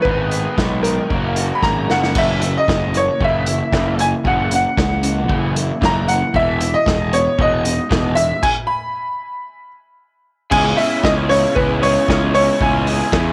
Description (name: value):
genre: indie rock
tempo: 115 BPM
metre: 4/4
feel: straight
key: unclear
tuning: A4 = 441 Hz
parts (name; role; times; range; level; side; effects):
- bright upright piano; melody; 0.0-13.3 s; A#4 to B5; -21 LUFS; equal; tape echo
- crunchy overdriven guitar; riff; 0.0-13.3 s; E2 to G#4; -27 LUFS; equal; analog chorus
- electric guitar through a small old amp; riff; 0.0-13.3 s; F#2 to F#4; -28 LUFS; equal; none
- fuzz picked electric bass; bass; 0.1-13.3 s; E1 to E2; -23 LUFS; equal; overdrive
- vintage drum kit; drums; 0.1-13.2 s; crash cymbal, hi-hat, kick drum, snare drum; -24 LUFS; equal; none
- mellow tonewheel organ; sustained chords; 10.5-13.3 s; C#5 to E6; -36 LUFS; equal; none
room: light reverb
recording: none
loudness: -17 LUFS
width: mono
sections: 0.0-2.2 A section; 2.2-10.5 B section; 10.5-13.3 C section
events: drum fill 1.6-2.2; stop 8.4-10.5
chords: 0.1 G#m; 1.1 F#; 2.2 F#7; 6.3 Emaj7; 10.5 C#m7